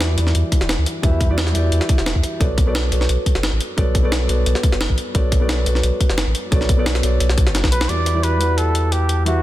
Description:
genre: liquid drum and bass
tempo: 175 BPM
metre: 4/4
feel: straight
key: B minor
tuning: A4 = 438 Hz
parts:
  - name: felt-muted upright piano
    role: accompaniment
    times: 0.0-9.4 s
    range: E3 to F#5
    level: -23 LUFS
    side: equal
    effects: ping-pong delay
  - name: saturated sub bass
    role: bass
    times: 0.0-9.4 s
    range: E1 to E2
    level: -19 LUFS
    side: equal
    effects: tube saturation
  - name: jungle sampler-style drum kit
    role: drums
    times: 0.0-9.3 s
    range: hi-hat, snare drum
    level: -23 LUFS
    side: equal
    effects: studio ambience
  - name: electronic kick drum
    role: drums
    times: 0.5-7.7 s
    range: none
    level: -17 LUFS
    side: equal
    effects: studio ambience
  - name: warm flugelhorn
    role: melody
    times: 7.7-9.4 s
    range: F#4 to D5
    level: -21 LUFS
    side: right 1 dB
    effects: digital delay
room: light reverb, digital ambience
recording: dense, heavily limited modern master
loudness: -16 LUFS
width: side -15 dB against mid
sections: 0.0-7.9 A section; 7.9-9.4 B section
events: drum fill 7.5-7.9; band accent 7.8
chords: 0.0 Em9; 2.4 Bm7; 7.9 Em9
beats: 0.01 0.35 0.69 | 1.03 1.38 1.72 2.06 | 2.41 2.75 3.09 3.43 | 3.78 4.12 4.46 4.81 | 5.15 5.49 5.83 6.18 | 6.52 6.86 7.21 7.55 | 7.89 8.23 8.58 8.92 | 9.26

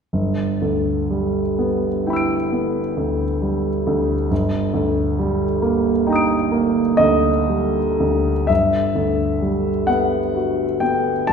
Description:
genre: classical, impressionist solo piano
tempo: 38-46 BPM (dotted quarters)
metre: 9/8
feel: rubato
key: G major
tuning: A4 = 440 Hz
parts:
  - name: warm grand piano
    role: solo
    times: 0.1-11.3 s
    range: E1 to D7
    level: -17 LUFS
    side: equal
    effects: none
room: wet scoring stage reverb, RT60 1.5 s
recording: recorded in a church or concert hall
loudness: -17 LUFS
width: side -6 dB against mid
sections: 0.1-8.5 A section; 8.5-11.3 B section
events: none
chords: 0.1 G6; 4.3 Ebmaj7/G; 8.5 Gmaj7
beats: | 0.13 1.59 2.98 | 4.31 5.63 6.99 | 8.50 9.89 11.30

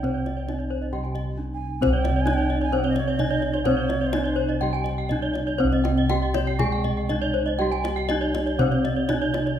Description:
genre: Balinese gamelan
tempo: 120-134 BPM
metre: 4/4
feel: straight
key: C pelog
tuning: A4 = 440 Hz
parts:
  - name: gamelan-type bronze metallophone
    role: melody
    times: 0.0-9.6 s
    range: C4 to Ab4-20c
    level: -27 LUFS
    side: equal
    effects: none
  - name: bright bansuri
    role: second line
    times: 0.0-4.8 s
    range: C5 to Ab5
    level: -32 LUFS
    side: right 7 dB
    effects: none
  - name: gamelan-type bronze metallophone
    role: accompaniment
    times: 0.0-9.6 s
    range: C3 to Ab3-20c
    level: -32 LUFS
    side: right 1 dB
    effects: none
  - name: gamelan-type bronze metallophone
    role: arpeggios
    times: 0.0-9.5 s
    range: C5 to Ab5-20c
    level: -29 LUFS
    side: left 6 dB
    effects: none
  - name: gamelan-type bronze metallophone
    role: arpeggios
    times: 0.0-9.6 s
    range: Db5+20c to Ab5-20c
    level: -30 LUFS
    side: right 5 dB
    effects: none
  - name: gamelan-type bossed gongs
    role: bass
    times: 0.0-9.6 s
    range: C2 to G4-30c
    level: -26 LUFS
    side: equal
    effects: none
  - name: kendang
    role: percussion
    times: 0.0-9.5 s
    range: none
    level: -32 LUFS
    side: left 1 dB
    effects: none
room: moderate recital hall reverb, RT60 1.7 s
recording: minimal, uncompressed stereo recording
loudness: -21 LUFS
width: side -10 dB against mid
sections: 0.0-5.6 A section; 5.6-9.6 B section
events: none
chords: none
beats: | 0.03 0.48 0.93 1.37 | 1.82 2.27 2.72 3.19 | 3.65 4.13 4.61 5.10 | 5.60 6.10 6.60 7.10 | 7.60 8.10 8.60 9.10

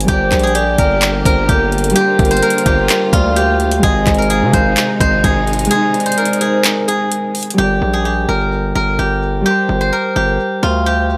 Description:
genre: hip hop, trap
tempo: 128 BPM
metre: 4/4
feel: half-time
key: G phrygian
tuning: A4 = 437 Hz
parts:
  - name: steel-string zither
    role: melody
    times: 0.0-11.2 s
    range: F4 to C5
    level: -19 LUFS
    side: equal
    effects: none
  - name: Celtic harp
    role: accompaniment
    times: 0.0-11.2 s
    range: G3 to Eb5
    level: -22 LUFS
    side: equal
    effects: none
  - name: distorted 808-style bass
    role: bass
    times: 0.0-11.2 s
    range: G1 to C3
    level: -20 LUFS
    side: equal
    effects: distortion
  - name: trap drum kit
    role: drums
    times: 0.0-7.6 s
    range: handclaps, hi-hat, kick drum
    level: -19 LUFS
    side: equal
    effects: none
  - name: hollow clarinet-like synth lead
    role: second line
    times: 0.1-7.1 s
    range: Ab4 to F5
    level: -24 LUFS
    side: equal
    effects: chorus, phaser, digital delay
  - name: clear symphonic string section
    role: sustained chords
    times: 0.1-7.5 s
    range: C3 to G4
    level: -25 LUFS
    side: equal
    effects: none
room: light reverb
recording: none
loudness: -14 LUFS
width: mono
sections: 0.0-7.6 A section; 7.6-11.2 B section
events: break 5.7-7.6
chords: 0.1 Gm; 3.8 Ab; 7.6 Gm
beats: | 0.08 0.55 1.02 1.49 | 1.96 2.43 2.90 3.36 | 3.83 4.30 4.77 5.24 | 5.71 6.18 6.64 7.11 | 7.58 8.05 8.52 8.99 | 9.46 9.93 10.39 10.86

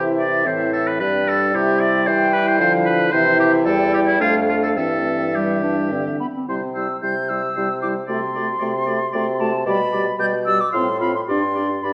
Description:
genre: quick classical-period movement for wind quintet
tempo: 111 BPM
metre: 3/4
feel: rubato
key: C major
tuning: A4 = 440 Hz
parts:
  - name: bright concert flute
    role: melody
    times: 0.0-11.9 s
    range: D5 to G6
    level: -26 LUFS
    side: equal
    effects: none
  - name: clear oboe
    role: second line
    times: 0.0-11.9 s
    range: E4 to F5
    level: -25 LUFS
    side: equal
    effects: none
  - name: mellow French horn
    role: accompaniment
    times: 0.0-11.9 s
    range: D3 to D4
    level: -27 LUFS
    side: equal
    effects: none
  - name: mellow clarinet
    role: accompaniment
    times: 0.0-11.9 s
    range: G3 to G4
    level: -28 LUFS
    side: equal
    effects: none
  - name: warm bassoon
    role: bass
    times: 0.0-11.9 s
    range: E2 to E3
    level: -26 LUFS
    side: equal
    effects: none
room: wet concert hall reverb, RT60 1.9 s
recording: worn, warbling old tape, cassette tape, warbly pitch drift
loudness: -19 LUFS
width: mono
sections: 0.0-6.5 A section; 6.5-11.9 B section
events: none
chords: 0.0 C; 1.0 G; 1.5 C; 2.6 Bdim/D; 3.1 C; 4.2 F; 4.8 C/G; 5.9 G5; 6.5 C; 8.1 D7/C; 9.7 G/B; 10.7 F/A; 11.3 G5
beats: 0.45 1.00 | 1.55 2.08 2.61 | 3.14 3.67 4.21 | 4.77 5.34 5.92 | 6.48 7.02 7.56 | 8.09 8.62 9.14 | 9.67 10.21 10.74 | 11.30 11.85

